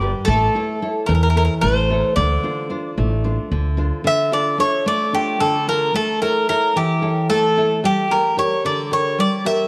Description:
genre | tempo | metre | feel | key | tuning
greek folk, Greek bouzouki band | 222 BPM (eighths) | 7/8 | straight | D minor, D harmonic minor from 4.1 s | A4 = 436 Hz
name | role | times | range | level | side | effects
Greek bouzouki | melody | 0.0-9.7 s | G4 to E5 | -21 LUFS | equal | none
nylon-string guitar | accompaniment | 0.0-9.7 s | D3 to D5 | -24 LUFS | equal | none
upright bass | bass | 0.0-3.9 s | G1 to E2 | -22 LUFS | equal | none
room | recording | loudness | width
moderate plate reverb, RT60 3.3 s | none | -19 LUFS | mono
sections
0.0-4.1 A section; 4.1-9.7 B section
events
none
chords
0.3 A; 2.2 Dm7; 4.1 Dm; 6.0 A; 7.8 Gm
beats
0.01 | 0.28 0.55 0.82 1.09 1.36 1.63 1.90 | 2.17 2.44 2.71 2.98 3.25 3.52 3.79 | 4.06 4.33 4.60 4.87 5.14 5.41 5.68 | 5.95 6.22 6.49 6.76 7.03 7.30 7.57 | 7.84 8.11 8.38 8.65 8.91 9.18 9.45

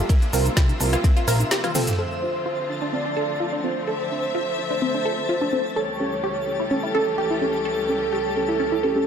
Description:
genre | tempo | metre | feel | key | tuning
progressive house | 127 BPM | 4/4 | straight | D minor | A4 = 440 Hz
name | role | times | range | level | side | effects
rich studio string section | sustained chords | 0.0-9.1 s | C#2 to E5 | -30 LUFS | left 3 dB | sidechain pumping
deep mellow chord stab | stabs | 0.0-9.1 s | C4 to C5 | -29 LUFS | right 3 dB | chorus, sidechain pumping, dub echo
twinkling granular texture | texture | 0.0-9.1 s | E5 to A6 | -34 LUFS | left 1 dB | built-in reverb, sidechain pumping
wide unison pluck | arpeggios | 0.1-8.9 s | C4 to Bb4 | -27 LUFS | equal | sidechain pumping, dub echo
deep house drum kit | drums | 0.1-9.0 s | crash cymbal, hi-hat, rim click, shaker, snare drum, toms | -26 LUFS | equal | low-pass filter on hats, low-pass filter on perc, low-pass filter on snare, low-pass filter on toms, low-pass filter on cymbals
electronic kick drum | drums | 0.1-1.1 s | none | -18 LUFS | equal | none
raw garage drum kit | drums | 0.1-2.0 s | ride cymbal, snare drum | -39 LUFS | right 2 dB | sidechain pumping on cymbals, high-pass filter on cymbals, high-pass filter on snare, high-pass filter on room
fat analog bass | bass | 0.3-1.4 s | Bb1 to C2 | -22 LUFS | equal | sidechain pumping
cowbell and congas | percussion | 0.3-1.5 s | none | -35 LUFS | left 1 dB | overdrive, sidechain pumping on perc
warm velvety synth lead | melody | 2.0-9.1 s | A4 to D5 | -26 LUFS | right 1 dB | chorus, tape echo
room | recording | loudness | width
moderate digital room reverb, RT60 1.1 s, digital ambience | none | -20 LUFS | side -7 dB against mid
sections
0.0-2.0 A section; 2.0-9.1 B section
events
filter sweep on synth pluck 0.0-2.0; break 1.5-2.0; drum fill 1.6-2.0; filter sweep on synth stab 2.0-9.1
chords
0.1 C7sus4; 2.0 Dm7; 5.8 A7/C#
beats
| 0.10 0.57 1.04 1.51 | 1.99 2.46 2.93 3.40 | 3.88 4.35 4.82 5.29 | 5.76 6.24 6.71 7.18 | 7.65 8.13 8.60

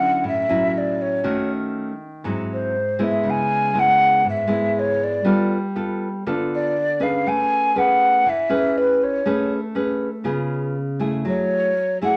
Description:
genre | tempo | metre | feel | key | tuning
bossa nova | 120 BPM | 4/4 | straight | unclear | A4 = 440 Hz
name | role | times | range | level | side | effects
breathy mellow jazz flute | melody | 0.0-12.2 s | B4 to G#5 | -21 LUFS | equal | none
nylon-string guitar | accompaniment | 0.0-12.2 s | G#2 to B4 | -25 LUFS | equal | none
room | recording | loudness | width
wet studio reverb, RT60 0.6 s | none | -21 LUFS | mono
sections
0.0-11.3 A section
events
none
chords
0.0 Dmaj9; 1.2 D#m7b5; 2.2 G#7b13; 3.2 C#m7; 5.2 G9; 7.3 Amaj9; 10.3 C#7; 11.3 F#m9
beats
0.24 0.74 | 1.24 1.74 2.25 2.75 | 3.25 3.75 4.25 4.75 | 5.25 5.75 6.25 6.75 | 7.25 7.75 8.26 8.76 | 9.26 9.76 10.26 10.76 | 11.26 11.76

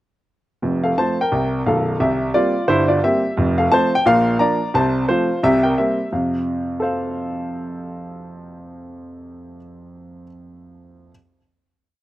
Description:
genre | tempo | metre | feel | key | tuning
jazz, stride piano | 174 BPM | 4/4 | swing 58% on 8ths | F major | A4 = 440 Hz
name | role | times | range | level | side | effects
clear concert grand piano | solo | 0.6-11.1 s | B0 to Bb5 | -17 LUFS | equal | none
room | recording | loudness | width
little or no reverb | recorded outdoors, with no room sound | -16 LUFS | side -15 dB against mid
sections
0.6-6.1 A section; 6.1-8.9 final chord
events
none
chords
0.6 F; 2.0 C7; 3.4 F; 4.1 Bb; 4.7 F/C; 5.4 C7; 6.1 F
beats
| 0.62 0.97 1.31 1.65 | 2.00 2.34 2.68 3.02 | 3.37 3.71 4.05 4.40 | 4.74 5.09 5.43 5.78 | 6.12 6.47 6.81 7.16 | 7.50 7.85 8.19 8.54

